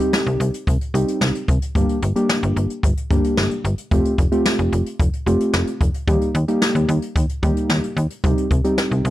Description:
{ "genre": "synth-pop", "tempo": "111 BPM", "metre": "4/4", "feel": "straight", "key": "unclear", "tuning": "A4 = 440 Hz", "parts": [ { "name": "muted felt-like synth keys", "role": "accompaniment", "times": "0.0-9.1 s", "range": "G3 to G4", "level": "-21 LUFS", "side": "equal", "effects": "chorus" }, { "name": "jazz brush drum kit", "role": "drums", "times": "0.0-9.1 s", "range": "hi-hat, kick drum, snare drum", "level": "-21 LUFS", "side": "equal", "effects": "none" }, { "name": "slap-like FM bass", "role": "bass", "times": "0.3-9.1 s", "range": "F1 to Eb2", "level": "-20 LUFS", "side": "equal", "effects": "none" } ], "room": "studio reverb", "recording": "dry, gritty hardware recording", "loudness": "-17 LUFS", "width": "side -14 dB against mid", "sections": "0.0-9.1 A section", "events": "none", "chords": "0.0 Cm; 1.8 Gm; 3.9 Fadd9; 6.1 Eb; 8.2 Cm", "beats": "0.13 0.67 1.21 | 1.75 2.29 2.83 3.37 | 3.92 4.46 5.00 5.54 | 6.08 6.62 7.16 7.70 | 8.24 8.78" }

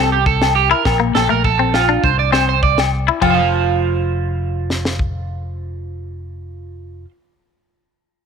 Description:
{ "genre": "highlife guitar band", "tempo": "102 BPM", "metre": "4/4", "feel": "straight", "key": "F major", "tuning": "A4 = 442 Hz", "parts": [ { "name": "semi-hollow electric guitar", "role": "accompaniment", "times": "0.0-3.4 s", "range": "F3 to E4", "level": "-19 LUFS", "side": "left 12 dB", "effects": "spring reverb" }, { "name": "electric guitar at the edge of break-up", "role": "arpeggios", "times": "0.0-7.1 s", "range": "F4 to F5", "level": "-18 LUFS", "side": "right 12 dB", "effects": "analog chorus, slapback echo" }, { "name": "fingered electric bass", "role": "bass", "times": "0.0-7.0 s", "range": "F1 to C2", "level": "-21 LUFS", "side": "equal", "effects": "none" }, { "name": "tight funk drum kit", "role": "drums", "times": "0.3-5.1 s", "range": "crash cymbal, kick drum, snare drum", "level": "-22 LUFS", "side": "left 1 dB", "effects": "none" }, { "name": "agogo bells", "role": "percussion", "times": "0.4-3.4 s", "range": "none", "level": "-22 LUFS", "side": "left 16 dB", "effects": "none" } ], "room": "light reverb, studio ambience", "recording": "1960s-style stereo with parts hard left and right", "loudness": "-14 LUFS", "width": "side -6 dB against mid", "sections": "0.0-3.2 A section; 3.2-5.6 B section", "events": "none", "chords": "0.0 C; 0.9 Bb; 2.0 Csus2; 3.2 F5", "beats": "0.27 | 0.86 1.45 2.04 2.63 | 3.22 3.81 4.41 5.00" }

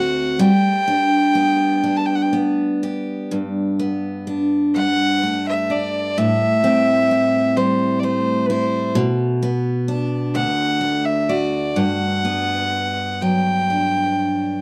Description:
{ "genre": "celtic folk, Celtic slow air", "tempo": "42 BPM (dotted quarters)", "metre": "6/8", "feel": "uneven beats, rubato", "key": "G major", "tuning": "A4 = 440 Hz", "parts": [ { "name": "clear fiddle", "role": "melody", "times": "0.0-14.6 s", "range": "B4 to A5", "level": "-22 LUFS", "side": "equal", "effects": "none" }, { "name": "picked steel-string acoustic guitar", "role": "accompaniment", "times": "0.0-14.6 s", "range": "D2 to G4", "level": "-21 LUFS", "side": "equal", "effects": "none" } ], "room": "light reverb", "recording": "dry, close 1970s-style studio recording", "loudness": "-19 LUFS", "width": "mono", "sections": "0.0-3.3 A section; 3.3-14.6 B section", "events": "none", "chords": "0.4 G; 3.3 Gadd9; 6.2 Am7; 9.0 Bm; 10.3 D; 11.8 Gmaj7", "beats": "| 0.39 1.84 | 3.31 4.76 | 6.19 7.58 | 8.96 10.34 | 11.76 13.21" }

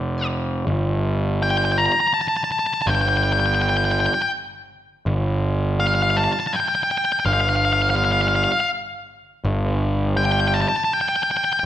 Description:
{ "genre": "post-rock", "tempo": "82 BPM", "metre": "3/4", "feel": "straight", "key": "unclear", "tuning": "A4 = 443 Hz", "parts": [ { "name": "octave-fuzz lead guitar", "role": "melody", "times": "0.0-11.7 s", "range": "F5 to Bb5", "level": "-19 LUFS", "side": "left 1 dB", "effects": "distortion" }, { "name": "fuzz picked electric bass", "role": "bass", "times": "0.0-10.6 s", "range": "F1 to G1", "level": "-21 LUFS", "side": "right 1 dB", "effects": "overdrive" } ], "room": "moderate recital hall reverb, RT60 1.5 s", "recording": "recorded in a church or concert hall", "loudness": "-18 LUFS", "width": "side -11 dB against mid", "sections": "0.7-11.7 A section", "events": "none", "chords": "0.0 F5; 0.7 N.C.", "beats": "| 0.68 1.41 2.14 | 2.87 3.60 4.34 | 5.07 5.80 6.53 | 7.26 7.99 8.72 | 9.45 10.18 10.91 | 11.64" }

